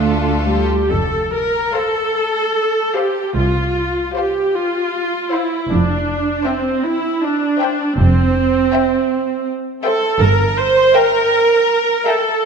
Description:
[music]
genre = classical, slow romantic movement for string orchestra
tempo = 42-55 BPM (dotted quarters)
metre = 12/8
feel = rubato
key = F major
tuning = A4 = 440 Hz
[part]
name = rich studio violin section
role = second line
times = 0.0-12.4 s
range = F4 to E5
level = -26 LUFS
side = left 3 dB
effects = none
[part]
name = rich studio viola section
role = accompaniment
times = 0.0-12.5 s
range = A3 to C5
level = -16 LUFS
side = right 2 dB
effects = none
[part]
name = clear studio cello section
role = bass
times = 0.0-11.1 s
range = C2 to A3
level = -23 LUFS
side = right 3 dB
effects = none
[part]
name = clear studio double bass section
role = bass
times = 0.0-11.1 s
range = F1 to D2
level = -19 LUFS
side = right 1 dB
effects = none
[part]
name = rich studio violin section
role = melody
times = 1.7-12.4 s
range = F5 to G5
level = -26 LUFS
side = left 10 dB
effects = none
[sound]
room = moderate scoring stage reverb, RT60 2.0 s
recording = none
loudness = -14 LUFS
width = side -6 dB against mid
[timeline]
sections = 0.9-12.5 A section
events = none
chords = 0.0 Dm; 0.9 F; 5.7 C/F; 10.2 Edim/G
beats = | 0.91 2.15 3.36 4.56 | 5.70 6.85 7.98 9.11 | 10.21 11.33

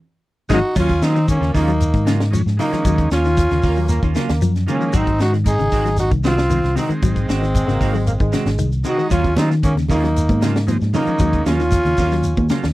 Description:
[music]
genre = afrobeat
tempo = 115 BPM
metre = 4/4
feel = straight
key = Eb dorian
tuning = A4 = 440 Hz
[part]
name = bright trombone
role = melody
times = 0.5-12.5 s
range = C4 to Ab4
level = -21 LUFS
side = equal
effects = none
[part]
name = growling tenor saxophone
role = second line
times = 0.5-12.5 s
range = Ab3 to Eb4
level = -29 LUFS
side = right 2 dB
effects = none
[part]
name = combo organ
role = accompaniment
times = 0.5-11.5 s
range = Eb3 to Ab4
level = -26 LUFS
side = right 3 dB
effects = none
[part]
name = semi-hollow electric guitar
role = arpeggios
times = 0.5-12.7 s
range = C3 to Ab3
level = -25 LUFS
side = left 6 dB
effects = none
[part]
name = clean electric guitar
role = stabs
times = 0.5-12.7 s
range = Eb3 to Gb4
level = -25 LUFS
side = right 6 dB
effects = analog chorus
[part]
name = fingered electric bass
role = bass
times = 0.5-12.7 s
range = Ab1 to Eb3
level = -19 LUFS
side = equal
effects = none
[part]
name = tight funk drum kit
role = drums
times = 0.5-12.7 s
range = crash cymbal, hi-hat, kick drum, snare drum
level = -22 LUFS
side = equal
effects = none
[part]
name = congas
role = percussion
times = 0.5-0.6, 9.1-12.6 s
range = none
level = -25 LUFS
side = right 2 dB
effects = none
[part]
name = shekere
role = percussion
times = 0.5-12.7 s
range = none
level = -27 LUFS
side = left 1 dB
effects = none
[part]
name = bright trombone section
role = second line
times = 3.6-8.7 s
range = Ab3 to Bb3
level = -27 LUFS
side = right 2 dB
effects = none
[sound]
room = little or no reverb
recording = dry, close 1970s-style studio recording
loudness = -15 LUFS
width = side -17 dB against mid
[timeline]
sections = 0.8-12.7 A section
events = drum fill 0.0-0.8; band accent 0.0-0.8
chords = 0.0 Ab7(no3); 0.8 Ebm9; 4.9 Ab7; 9.1 Ebm9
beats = 0.24 | 0.76 1.28 1.80 2.32 | 2.85 3.37 3.89 4.41 | 4.94 5.46 5.98 6.50 | 7.03 7.55 8.07 8.59 | 9.11 9.63 10.16 10.68 | 11.20 11.72 12.24

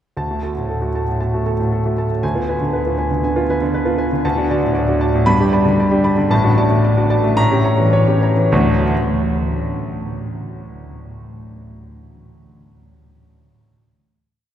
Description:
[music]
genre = classical, virtuoso piano study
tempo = 101-120 BPM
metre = 4/4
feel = rubato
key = D major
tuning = A4 = 440 Hz
[part]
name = warm concert grand piano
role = solo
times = 0.2-8.9 s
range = A1 to B5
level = -15 LUFS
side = equal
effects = none
[sound]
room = wet cathedral reverb, RT60 5.2 s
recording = recorded in a church or concert hall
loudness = -15 LUFS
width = side -10 dB against mid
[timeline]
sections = 0.2-8.5 A section; 8.5-10.8 final chord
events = slowing down 3.2-8.5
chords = 0.2 D; 2.2 Ddim7; 4.2 D; 5.3 G; 6.3 D/A; 7.4 A7b9; 8.5 D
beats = | 0.17 0.68 1.20 1.72 | 2.23 2.73 3.23 3.73 | 4.24 4.74 5.26 5.78 | 6.30 6.83 7.37 7.93 | 8.52

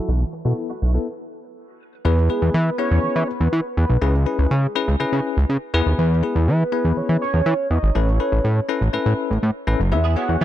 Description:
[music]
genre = pop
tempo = 122 BPM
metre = 4/4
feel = straight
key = E major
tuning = A4 = 438 Hz
[part]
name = bell-like tine electric piano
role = accompaniment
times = 0.0-10.4 s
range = B3 to C#5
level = -25 LUFS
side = left 6 dB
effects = fast stereo tremolo
[part]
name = hollow square pluck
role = arpeggios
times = 0.0-1.0 s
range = E3 to B4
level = -36 LUFS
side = right 5 dB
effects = chorus, tape echo
[part]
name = direct-recorded clean electric guitar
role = riff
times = 0.1-1.0, 9.9-10.4 s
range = A3 to G#4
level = -33 LUFS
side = right 7 dB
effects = ensemble chorus
[part]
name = fat analog bass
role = bass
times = 0.1-10.4 s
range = F#1 to E3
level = -18 LUFS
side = equal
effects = none
[part]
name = warm velvety synth lead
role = melody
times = 2.1-10.4 s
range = G#4 to F#5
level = -26 LUFS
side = right 2 dB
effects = chorus, tremolo, tape echo
[sound]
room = digital ambience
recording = dark, warm production, low-pass filter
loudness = -18 LUFS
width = side -12 dB against mid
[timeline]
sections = 0.0-2.1 A section; 2.1-10.4 B section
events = filter sweep 0.0-2.1; stop 1.1-2.1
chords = 0.1 B7sus4; 2.1 E; 4.0 C#m7; 5.7 E; 8.0 Aadd9; 9.9 E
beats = | 0.08 0.58 1.07 1.56 | 2.05 2.54 3.04 3.53 | 4.02 4.51 5.00 5.49 | 5.99 6.48 6.97 7.46 | 7.95 8.45 8.94 9.43 | 9.92 10.41

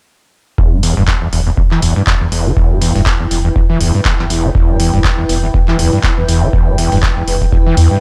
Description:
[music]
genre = acid house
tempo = 121 BPM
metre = 4/4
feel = swing 56% on 16ths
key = E minor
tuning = A4 = 440 Hz
[part]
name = overdriven acid bass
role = riff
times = 0.6-8.0 s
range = E1 to E3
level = -18 LUFS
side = equal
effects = distortion, lush chorus, sidechain pumping, tape echo
[part]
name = round analog bass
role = bass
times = 0.6-7.9 s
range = D1 to E2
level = -20 LUFS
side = equal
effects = tube saturation, sidechain pumping
[part]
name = electronic kick drum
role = drums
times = 0.6-7.6 s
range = none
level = -16 LUFS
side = equal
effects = none
[part]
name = granular cloud pad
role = texture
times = 1.9-8.0 s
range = E4 to G5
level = -23 LUFS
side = equal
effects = built-in reverb, sidechain pumping
[part]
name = punchy analog drum machine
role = drums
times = 0.8-7.9 s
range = handclaps, hi-hat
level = -22 LUFS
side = equal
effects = none
[sound]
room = little or no reverb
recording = dry, gritty hardware recording, cassette tape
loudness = -13 LUFS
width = mono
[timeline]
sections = 0.6-8.0 A section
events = none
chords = 0.6 Em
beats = | 0.58 1.08 1.57 2.07 | 2.57 3.06 3.56 4.05 | 4.55 5.05 5.54 6.04 | 6.53 7.03 7.53

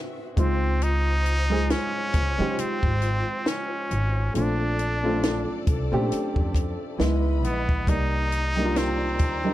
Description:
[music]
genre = R&B, neo-soul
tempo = 68 BPM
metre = 4/4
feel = swing 57% on 16ths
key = unclear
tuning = A4 = 440 Hz
[part]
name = warm baby grand piano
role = accompaniment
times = 0.0-9.5 s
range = G3 to D5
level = -28 LUFS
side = right 1 dB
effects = none
[part]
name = warm studio string section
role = sustained chords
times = 0.0-9.5 s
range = Eb3 to Cb6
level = -36 LUFS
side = left 4 dB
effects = none
[part]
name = trumpet with straight mute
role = melody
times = 0.4-9.5 s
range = Cb4 to Eb4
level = -28 LUFS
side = equal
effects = none
[part]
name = upright bass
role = bass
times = 0.4-9.5 s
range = Ab1 to Db3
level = -26 LUFS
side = equal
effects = none
[part]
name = compact cocktail drum kit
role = drums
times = 0.4-9.4 s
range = hi-hat, kick drum, snare drum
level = -26 LUFS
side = equal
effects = none
[sound]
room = small room ambience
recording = dark, warm production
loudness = -22 LUFS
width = side -14 dB against mid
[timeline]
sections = 0.0-9.5 A section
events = none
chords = 0.4 Dbmaj7; 4.3 Bbmaj9; 7.0 Dbm9; 7.9 Cm9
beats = | 0.81 1.70 2.58 3.46 | 4.34 5.23 6.11 6.99 | 7.87 8.76

